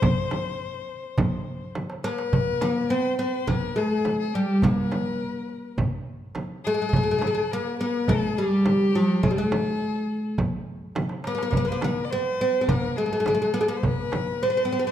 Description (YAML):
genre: Arabic maqam ensemble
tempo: 104 BPM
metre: 4/4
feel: straight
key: unclear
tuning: A4 = 440 Hz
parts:
  - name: oud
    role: melody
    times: 0.0-14.9 s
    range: F#3-50c to C4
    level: -24 LUFS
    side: equal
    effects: none
  - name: warm violin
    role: second line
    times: 0.0-14.9 s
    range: G4 to D5+40c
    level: -31 LUFS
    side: left 6 dB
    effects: none
  - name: darbuka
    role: percussion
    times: 0.0-14.8 s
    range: none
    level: -30 LUFS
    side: right 1 dB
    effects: none
  - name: frame drum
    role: percussion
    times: 0.0-14.3 s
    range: none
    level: -28 LUFS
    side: right 2 dB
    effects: none
room: wet recital hall reverb, RT60 1.4 s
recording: dark, warm production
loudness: -22 LUFS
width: side -10 dB against mid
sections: 0.0-2.3 A section; 2.3-14.9 B section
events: drum fill 1.8-2.3, 11.0-11.5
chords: none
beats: | 0.03 0.60 1.18 1.75 | 2.33 2.90 3.48 4.05 | 4.63 5.20 5.78 6.36 | 6.93 7.51 8.08 8.66 | 9.23 9.81 10.38 10.96 | 11.53 12.11 12.68 13.26 | 13.84 14.41